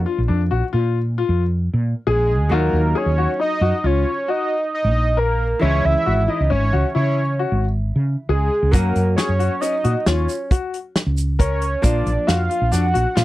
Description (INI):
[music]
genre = progressive instrumental, band music in an uneven meter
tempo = 135 BPM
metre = 7/4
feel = straight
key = F# major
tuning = A4 = 440 Hz
[part]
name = fat analog lead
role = melody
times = 0.0-13.2 s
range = G#4 to F#5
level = -22 LUFS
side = right 2 dB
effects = chorus
[part]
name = vintage hollow-body jazz guitar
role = accompaniment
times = 0.0-13.2 s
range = E3 to F#4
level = -28 LUFS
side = equal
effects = none
[part]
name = woody fretless electric bass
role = bass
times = 0.0-13.2 s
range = G#1 to C#3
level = -19 LUFS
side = equal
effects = wide subtle chorus
[part]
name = clear concert grand piano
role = arpeggios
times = 0.1-13.2 s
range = C#4 to A#4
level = -24 LUFS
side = left 8 dB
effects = none
[part]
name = warm soul drum kit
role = drums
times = 8.7-13.2 s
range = hi-hat, kick drum, snare drum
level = -19 LUFS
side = equal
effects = none
[part]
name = tube shaker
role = percussion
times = 8.7-13.2 s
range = none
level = -35 LUFS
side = right 8 dB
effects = none
[sound]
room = little or no reverb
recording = none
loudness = -17 LUFS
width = side -16 dB against mid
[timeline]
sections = 0.0-13.2 A section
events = none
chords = 0.0 A#; 2.5 D#madd9; 5.6 C#m; 8.7 F#; 11.8 A#